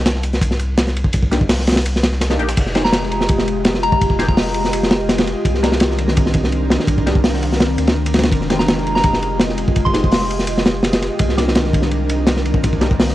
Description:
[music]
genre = drum and bass, jungle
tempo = 167 BPM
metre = 4/4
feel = straight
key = F dorian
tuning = A4 = 440 Hz
[part]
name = saturated sub bass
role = bass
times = 0.0-13.1 s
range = F1 to D2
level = -21 LUFS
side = equal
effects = none
[part]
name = breakbeat sampler-style drum kit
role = drums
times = 0.1-2.6 s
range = hi-hat, snare drum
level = -29 LUFS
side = right 1 dB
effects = high-pass filter on hats, high-pass filter on snare, high-pass filter on room
[part]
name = crunchy breakbeat drum kit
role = drums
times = 0.1-13.1 s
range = crash cymbal, hi-hat, kick drum, ride cymbal, snare drum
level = -16 LUFS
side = equal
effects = none
[part]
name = filtered dub chord stab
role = stabs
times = 1.3-12.9 s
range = Bb3 to C5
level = -26 LUFS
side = left 1 dB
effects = phaser, analog chorus, cassette tape, dub echo
[part]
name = ethereal airy pad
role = sustained chords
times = 2.7-13.1 s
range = Eb3 to Eb5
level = -21 LUFS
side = equal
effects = ensemble chorus, built-in reverb, cassette tape
[part]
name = soft synth bell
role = melody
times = 2.8-4.6, 8.6-10.4 s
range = Bb5 to C6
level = -22 LUFS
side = equal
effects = chorus, phaser, cassette tape, dub echo
[sound]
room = light reverb, studio reverb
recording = home recording on cassette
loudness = -14 LUFS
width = side -15 dB against mid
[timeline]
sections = 0.0-2.6 A section; 2.6-13.1 A section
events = drop 0.0-2.6, 2.6-13.1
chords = 0.0 Cm9; 2.6 Fm9; 5.4 Cm9; 8.3 Fm9; 11.2 Cm9

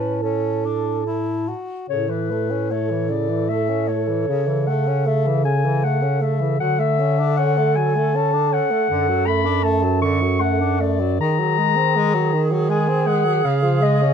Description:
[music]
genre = classical, lyrical piece for single-reed quartet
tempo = 78 BPM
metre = 3/4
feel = uneven beats, rubato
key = A major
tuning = A4 = 440 Hz
[part]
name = dark clarinet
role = melody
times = 0.0-14.1 s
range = B4 to C#6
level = -23 LUFS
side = left 7 dB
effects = none
[part]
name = warm alto saxophone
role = second line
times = 0.0-14.1 s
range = Ab4 to B4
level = -24 LUFS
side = right 8 dB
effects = none
[part]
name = clear tenor saxophone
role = accompaniment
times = 0.0-14.1 s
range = Db3 to F#4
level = -25 LUFS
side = left 4 dB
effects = none
[part]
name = mellow bass clarinet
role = bass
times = 0.0-14.1 s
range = F#2 to Eb3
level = -21 LUFS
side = right 1 dB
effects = none
[sound]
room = light reverb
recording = none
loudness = -17 LUFS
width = side -7 dB against mid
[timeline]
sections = 0.0-1.9 A section; 1.9-14.1 B section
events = none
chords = 0.0 A; 4.3 A/C#; 6.6 Dmaj7; 8.9 D/F#; 11.2 Ab7/Eb; 13.4 Db

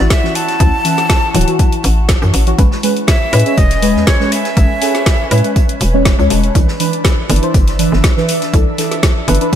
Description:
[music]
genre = deep house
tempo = 121 BPM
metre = 4/4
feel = swing 53% on 16ths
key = D major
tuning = A4 = 440 Hz
[part]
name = breathy bright jazz flute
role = melody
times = 0.0-5.8 s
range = C#5 to A5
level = -20 LUFS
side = right 1 dB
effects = diffuse ambient delay
[part]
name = deep mellow chord stab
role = stabs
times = 0.0-9.5 s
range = E3 to C#5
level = -17 LUFS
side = equal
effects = chorus, phaser, sidechain pumping, ping-pong delay
[part]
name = hollow knocking FM bass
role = bass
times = 0.0-9.4 s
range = D1 to A2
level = -14 LUFS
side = equal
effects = sidechain pumping
[part]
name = airy breathy pad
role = texture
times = 0.0-9.6 s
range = B3 to C#6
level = -24 LUFS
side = equal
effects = chorus, sidechain pumping
[part]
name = deep house drum kit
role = drums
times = 0.1-9.6 s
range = hi-hat, snare drum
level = -19 LUFS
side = left 1 dB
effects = none
[part]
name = electronic kick drum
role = drums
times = 0.1-9.6 s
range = none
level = -12 LUFS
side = equal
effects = none
[part]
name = vintage drum kit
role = drums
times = 0.1-9.6 s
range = hi-hat, snare drum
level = -29 LUFS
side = right 2 dB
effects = none
[sound]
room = moderate lush hall reverb, RT60 1.7 s, digital ambience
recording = dreamy mix soaked in reverb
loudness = -10 LUFS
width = side -10 dB against mid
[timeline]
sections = 0.0-9.6 A section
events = none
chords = 0.0 Dmaj9 (rootless); 2.6 Amaj9; 6.6 Cmaj9

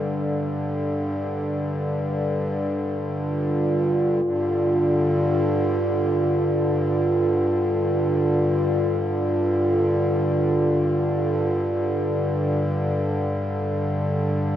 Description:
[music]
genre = world meditative, free-time meditation music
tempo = free time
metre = none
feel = none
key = unclear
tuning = A4 = 440 Hz
[part]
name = pedal harmonium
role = drone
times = 0.0-14.6 s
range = G2 to D3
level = -22 LUFS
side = equal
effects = none
[part]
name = glass harmonica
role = texture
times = 3.2-11.6 s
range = F4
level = -23 LUFS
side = right 1 dB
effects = none
[sound]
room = wet huge ambient reverb, RT60 6.8 s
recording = dark, warm production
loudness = -20 LUFS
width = side -11 dB against mid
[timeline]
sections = 0.0-14.6 A section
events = none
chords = none

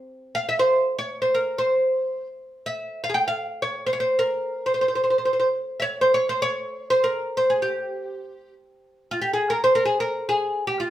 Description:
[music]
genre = arabic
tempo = free time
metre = none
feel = none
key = C maqam hijaz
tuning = A4 = 438 Hz
[part]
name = oud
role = solo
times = 0.3-10.9 s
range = F4 to G5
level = -21 LUFS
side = equal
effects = none
[sound]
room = moderate studio reverb, RT60 0.6 s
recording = band playing live in one room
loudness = -21 LUFS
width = side -12 dB against mid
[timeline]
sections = 0.1-10.9 A section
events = none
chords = none

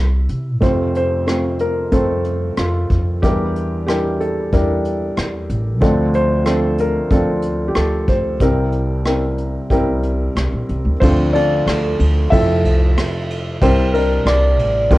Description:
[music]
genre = acoustic folk-pop ballad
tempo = 92 BPM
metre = 4/4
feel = straight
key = F major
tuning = A4 = 440 Hz
[part]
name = felt-muted upright piano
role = melody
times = 0.0-15.0 s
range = F1 to E5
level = -17 LUFS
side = equal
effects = cassette tape
[part]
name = upright bass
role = bass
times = 0.0-15.0 s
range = A1 to C3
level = -20 LUFS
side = equal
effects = none
[part]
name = soft brush drum kit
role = drums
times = 0.3-15.0 s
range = hi-hat, kick drum, ride cymbal, rim click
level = -21 LUFS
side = equal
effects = cassette tape
[part]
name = concert harp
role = arpeggios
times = 11.3-15.0 s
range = A4 to D5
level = -22 LUFS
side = right 2 dB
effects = cassette tape
[sound]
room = moderate small room reverb, RT60 0.5 s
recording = home recording on cassette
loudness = -15 LUFS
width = side -18 dB against mid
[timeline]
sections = 0.0-11.0 A section; 11.0-15.0 B section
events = none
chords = 0.0 C; 0.6 F; 3.2 Em7b5; 5.8 Dm7; 8.4 C7; 11.0 Dm7; 12.3 Fmaj7; 13.6 C7

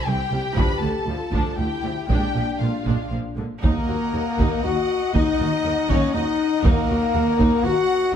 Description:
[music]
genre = cinematic, epic orchestral film score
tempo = 119 BPM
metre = 3/4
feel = straight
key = Eb minor from 3.6 s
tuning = A4 = 440 Hz
[part]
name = warm symphonic violin section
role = melody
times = 0.0-8.1 s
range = E#5 to B5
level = -32 LUFS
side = left 4 dB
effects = none
[part]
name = rich studio violin section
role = second line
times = 0.0-8.1 s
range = E#4 to Gb5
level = -32 LUFS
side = left 3 dB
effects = none
[part]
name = clear symphonic viola section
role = accompaniment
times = 0.0-8.1 s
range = C3 to Eb5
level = -31 LUFS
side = right 2 dB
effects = none
[part]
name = mellow French horn section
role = sustained chords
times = 0.1-8.1 s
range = Bb3 to G4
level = -24 LUFS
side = left 5 dB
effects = none
[part]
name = clear symphonic double bass section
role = bass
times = 0.1-7.7 s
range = A#1 to Eb2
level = -27 LUFS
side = right 3 dB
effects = none
[part]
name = rich symphonic cello section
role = bass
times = 0.1-7.7 s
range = C2 to A#2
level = -28 LUFS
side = right 3 dB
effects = none
[part]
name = taiko ensemble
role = drums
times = 0.6-7.9 s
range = none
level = -24 LUFS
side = right 1 dB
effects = none
[part]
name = mellow trumpet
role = stabs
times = 3.6-8.1 s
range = Bb3 to Gb4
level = -28 LUFS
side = right 2 dB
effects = none
[sound]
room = light reverb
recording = none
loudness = -19 LUFS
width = side -8 dB against mid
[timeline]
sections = 0.0-3.6 A section; 3.6-8.2 B section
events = none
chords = 0.0 C; 0.6 Dm; 2.1 A#7; 3.6 Ebm

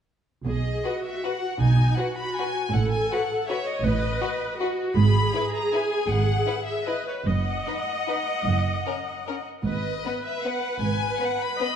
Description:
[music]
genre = classical, orchestral ballroom waltz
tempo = 144-173 BPM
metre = 3/4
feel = rubato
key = B major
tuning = A4 = 440 Hz
[part]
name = rich chamber viola section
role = accompaniment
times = 0.4-11.8 s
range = D#4 to D#5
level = -28 LUFS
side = right 1 dB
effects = none
[part]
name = rich chamber violin section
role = melody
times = 0.5-11.8 s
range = C#5 to B5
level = -30 LUFS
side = left 5 dB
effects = none
[part]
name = rich symphonic double bass section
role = bass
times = 0.5-11.1 s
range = F#1 to B1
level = -26 LUFS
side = right 2 dB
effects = none
[part]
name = warm chamber cello section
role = bass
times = 0.5-11.1 s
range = F#2 to B2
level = -27 LUFS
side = right 3 dB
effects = none
[part]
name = warm studio violin section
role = second line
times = 0.8-11.7 s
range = B3 to B4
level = -32 LUFS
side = left 4 dB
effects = none
[sound]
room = moderate scoring stage reverb, RT60 1.9 s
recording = dark, warm production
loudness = -23 LUFS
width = side -8 dB against mid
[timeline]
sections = 0.5-11.8 A section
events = none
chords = 0.5 B; 2.7 B7/A; 5.0 E/G#; 7.3 B/F# (rootless); 9.7 G#m

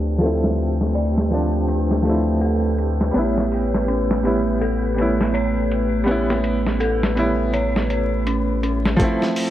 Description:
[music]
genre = trip hop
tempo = 82 BPM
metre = 4/4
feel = swing 58% on 16ths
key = D dorian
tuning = A4 = 444 Hz
[part]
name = clear upright piano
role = accompaniment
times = 0.0-9.5 s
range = F3 to E4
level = -22 LUFS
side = equal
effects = tremolo, tape echo
[part]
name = dark analog pad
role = sustained chords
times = 0.0-9.5 s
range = A3 to B4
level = -25 LUFS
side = right 1 dB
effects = chorus, phaser
[part]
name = dark detuned synth bell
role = arpeggios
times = 0.0-9.0 s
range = C#4 to D5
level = -27 LUFS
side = left 2 dB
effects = chorus, low-pass filter, ping-pong delay
[part]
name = soft dub sub bass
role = bass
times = 0.0-9.0 s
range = A1 to D2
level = -23 LUFS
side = equal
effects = none
[part]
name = wind-like tuned noise texture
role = texture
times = 0.0-9.0 s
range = G4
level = -34 LUFS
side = right 4 dB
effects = built-in reverb
[part]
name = dusty soul sampler-style drum kit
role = drums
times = 0.2-9.5 s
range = hi-hat, kick drum, snare drum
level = -24 LUFS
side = equal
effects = low-pass filter on snare, low-pass filter on hats, low-pass filter on kick
[sound]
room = light reverb, digital ambience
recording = vinyl crackle, low-pass filter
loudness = -18 LUFS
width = side -12 dB against mid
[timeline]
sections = 0.0-9.0 A section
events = filter sweep on synth bell 0.0-9.0; filter sweep 0.0-9.0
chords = 0.0 Dm9; 3.1 A9; 9.0 Dm9 (rootless)

